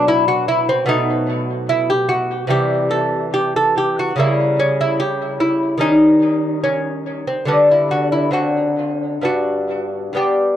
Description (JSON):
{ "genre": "classical, baroque-style dance for lute", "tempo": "72 BPM", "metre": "4/4", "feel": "rubato", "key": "G major", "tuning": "A4 = 440 Hz", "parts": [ { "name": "lute", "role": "solo", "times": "0.0-10.6 s", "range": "G2 to A4", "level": "-15 LUFS", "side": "equal", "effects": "tape echo" } ], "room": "light reverb", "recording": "dry, close 1970s-style studio recording", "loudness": "-15 LUFS", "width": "side -11 dB against mid", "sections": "0.0-10.6 A section", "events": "none", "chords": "0.0 B5; 0.9 B7; 2.5 C; 4.2 C#dim7; 5.8 Eb7; 7.5 G/D; 8.3 D7; 9.2 G" }